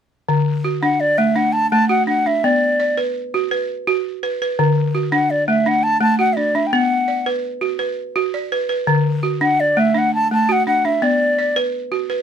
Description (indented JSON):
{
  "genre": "west african traditional, West African string and xylophone music",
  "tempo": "112 BPM (dotted quarters)",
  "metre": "12/8",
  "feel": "straight",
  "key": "D major",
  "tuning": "A4 = 441 Hz",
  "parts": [
    { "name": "balafon", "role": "arpeggios", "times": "0.3-12.2 s", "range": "D3 to D5", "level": "-18 LUFS", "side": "right 1 dB", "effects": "none" },
    { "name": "bright wooden flute", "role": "melody", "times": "0.8-11.6 s", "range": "D5 to A5", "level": "-16 LUFS", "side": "equal", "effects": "none" }
  ],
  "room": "little or no reverb",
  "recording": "close, detailed microphones",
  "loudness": "-16 LUFS",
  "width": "side -8 dB against mid",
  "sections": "0.3-12.2 A section",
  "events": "none",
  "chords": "0.3 D; 2.4 Bm; 4.6 D; 6.7 Bm; 8.9 D; 11.0 Bm",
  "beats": "| 0.29 0.83 1.36 1.90 | 2.44 2.98 3.52 4.05 | 4.59 5.13 5.67 6.20 | 6.74 7.28 7.81 8.35 | 8.89 9.42 9.96 10.49 | 11.03 11.57 12.10"
}